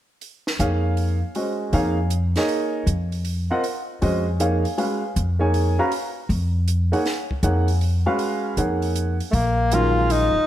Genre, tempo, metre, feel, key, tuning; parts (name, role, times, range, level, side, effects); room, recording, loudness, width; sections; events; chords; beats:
modal jazz; 158 BPM; 3/4; swing 66% on 8ths; Bb phrygian; A4 = 440 Hz
compact cocktail drum kit; drums; 0.2-10.2 s; hi-hat, kick drum, snare drum; -32 LUFS; right 2 dB
warm grand piano; accompaniment; 0.6-10.3 s; Eb3 to Bb5; -23 LUFS; right 1 dB
upright bass; bass; 0.6-10.4 s; Bb1 to F2; -21 LUFS; equal
breathy tenor saxophone; melody; 9.3-10.5 s; A3 to F4; -19 LUFS; left 1 dB; analog delay
moderate plate reverb, RT60 1.5 s, small room reverb; dreamy mix soaked in reverb; -20 LUFS; side -12 dB against mid
0.2-9.3 A section; 9.3-10.5 B section
0.2 Bbm9; 4.8 Abm9; 9.3 Bbm7
| 0.21 0.59 0.97 | 1.35 1.73 2.11 | 2.49 2.87 3.25 | 3.63 4.01 4.39 | 4.78 5.16 5.54 | 5.92 6.30 6.68 | 7.06 7.44 7.82 | 8.20 8.58 8.96 | 9.34 9.72 10.10